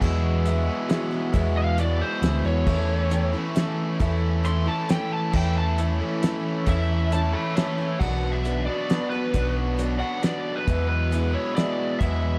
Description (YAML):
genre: folk rock and heartland rock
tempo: 135 BPM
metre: 3/4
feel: straight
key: unclear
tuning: A4 = 440 Hz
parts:
  - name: bright upright piano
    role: accompaniment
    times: 0.0-12.4 s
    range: F#4 to G5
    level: -40 LUFS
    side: equal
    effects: none
  - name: picked twelve-string acoustic guitar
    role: accompaniment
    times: 0.0-12.4 s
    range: E2 to F#4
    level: -33 LUFS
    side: equal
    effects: none
  - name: pedal harmonium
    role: sustained chords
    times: 0.0-8.0 s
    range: F#3 to A4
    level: -38 LUFS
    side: equal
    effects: none
  - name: raw garage guitar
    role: riff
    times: 0.0-12.4 s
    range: E2 to F#4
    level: -32 LUFS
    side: equal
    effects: overdrive
  - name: hollow-body short-scale picked electric bass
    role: bass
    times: 0.0-12.4 s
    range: B1 to E2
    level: -26 LUFS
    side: equal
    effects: none
  - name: cloth-damped thuddy drum kit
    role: drums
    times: 0.0-12.1 s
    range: crash cymbal, hi-hat, kick drum, snare drum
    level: -29 LUFS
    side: equal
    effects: none
  - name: lead guitar through a small cranked amp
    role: melody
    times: 1.6-12.4 s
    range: A4 to C6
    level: -32 LUFS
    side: equal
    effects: overdrive
room: light reverb, studio ambience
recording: none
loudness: -24 LUFS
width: mono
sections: 0.0-8.0 A section; 8.0-12.4 B section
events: lead electric guitar solo 0.0-8.0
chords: 0.0 Eadd9; 2.7 A/E; 8.0 Bm; 10.7 Eadd9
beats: | 0.02 0.46 0.90 | 1.35 1.79 2.23 | 2.68 3.12 3.56 | 4.01 4.45 4.89 | 5.34 5.78 6.22 | 6.67 7.11 7.56 | 8.00 8.45 8.89 | 9.34 9.78 10.22 | 10.67 11.12 11.56 | 12.00